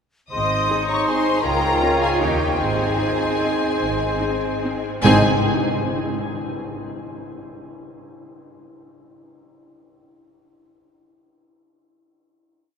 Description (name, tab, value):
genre	classical, orchestral ballroom waltz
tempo	138-172 BPM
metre	3/4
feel	rubato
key	Ab major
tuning	A4 = 441 Hz
part	warm symphonic violin section	melody	0.3-5.3 s	G5 to Eb6	-26 LUFS	left 3 dB	none
part	mellow clarinet	second line	0.3-5.2 s	Eb4 to F4	-29 LUFS	right 1 dB	none
part	mellow hollow concert flute	second line	0.3-5.3 s	Eb5 to C6	-27 LUFS	left 1 dB	none
part	warm oboe	second line	0.3-5.2 s	C5 to Db5	-30 LUFS	equal	none
part	warm symphonic violin section	second line	0.3-5.3 s	G4 to Eb5	-28 LUFS	left 3 dB	none
part	clear bassoon	accompaniment	0.3-5.2 s	Ab3 to Bb3	-29 LUFS	equal	none
part	rich symphonic cello section	bass	0.3-5.3 s	Ab2 to F4	-26 LUFS	right 2 dB	none
part	warm studio double bass section	bass	0.3-5.3 s	Ab1 to Eb2	-27 LUFS	right 2 dB	none
part	rich studio viola section	accompaniment	0.7-5.3 s	C4 to Ab4	-29 LUFS	right 1 dB	none
part	mellow French horn section	sustained chords	0.7-5.2 s	C4 to F4	-30 LUFS	left 1 dB	none
part	cymbal swell and tam-tam	percussion	2.6-6.6 s	none	-31 LUFS	left 2 dB	none
room	wet cathedral reverb, RT60 4.8 s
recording	recorded in a church or concert hall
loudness	-18 LUFS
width	side -6 dB against mid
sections	0.3-5.0 A section; 5.0-6.3 final chord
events	slowing down 2.0-5.0; band accent 5.0-5.4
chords	0.3 Ab; 1.5 Db; 2.2 Eb7; 2.6 Ab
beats	| 0.33 0.71 1.09 | 1.45 1.82 2.21 | 2.59 2.98 3.40 | 3.81 4.21 4.64 | 5.04 5.44 5.87